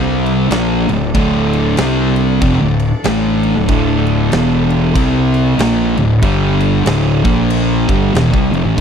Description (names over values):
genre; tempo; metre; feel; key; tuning
stoner and doom metal; 94 BPM; 4/4; swing 60% on 8ths; D minor; A4 = 436 Hz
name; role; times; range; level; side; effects
bowed-like drone; sustained chords; 0.0-8.8 s; D4 to D5; -26 LUFS; right 1 dB; built-in reverb
thick fuzz guitar; riff; 0.0-8.8 s; D2 to C4; -16 LUFS; left 9 dB; distortion
thick fuzz guitar; riff; 0.0-8.8 s; D2 to C4; -16 LUFS; right 10 dB; distortion
fuzz fingered electric bass; bass; 0.0-8.8 s; D1 to C2; -19 LUFS; equal; overdrive
big rock drum kit; drums; 0.3-8.8 s; crash cymbal, kick drum, ride cymbal, snare drum; -21 LUFS; equal; none
room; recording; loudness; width
little or no reverb; dry, close 1970s-style studio recording; -11 LUFS; side -7 dB against mid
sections
0.0-8.8 A section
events
none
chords
0.0 C5; 0.5 Dm; 1.8 C5; 2.4 Dm; 4.3 E5; 5.0 C5; 5.6 Dm; 6.2 G5; 6.9 D5; 7.2 Bb5; 7.8 Dm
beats
0.50 | 1.14 1.77 2.41 3.05 | 3.68 4.32 4.96 5.59 | 6.23 6.86 7.50 8.14 | 8.77